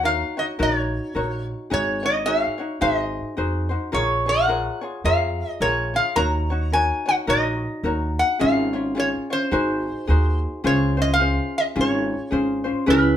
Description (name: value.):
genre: Hawaiian.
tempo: 108 BPM.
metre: 4/4.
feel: swing 60% on 8ths.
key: Db major.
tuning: A4 = 440 Hz.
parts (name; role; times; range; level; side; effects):
metal-body resonator slide guitar; melody; 0.0-13.2 s; B4 to Bb5; -22 LUFS; equal; none.
ukulele; accompaniment; 0.0-13.2 s; Db4 to Db5; -24 LUFS; left 2 dB; none.
upright bass; bass; 0.0-13.2 s; Ab1 to F2; -25 LUFS; right 1 dB; none.
vibraphone with hard mallets; second line; 12.9-13.2 s; E4; -21 LUFS; right 8 dB; none.
room: moderate studio reverb, RT60 0.6 s.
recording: band playing live in one room.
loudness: -20 LUFS.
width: side -10 dB against mid.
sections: 0.0-12.9 A section.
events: none.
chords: 0.0 Ebm7; 1.7 Ab7sus4; 2.8 Ab7; 3.9 Bbm7; 6.2 Ebm7; 8.4 Db/Ab; 9.5 Ab7; 10.6 Dbmaj7.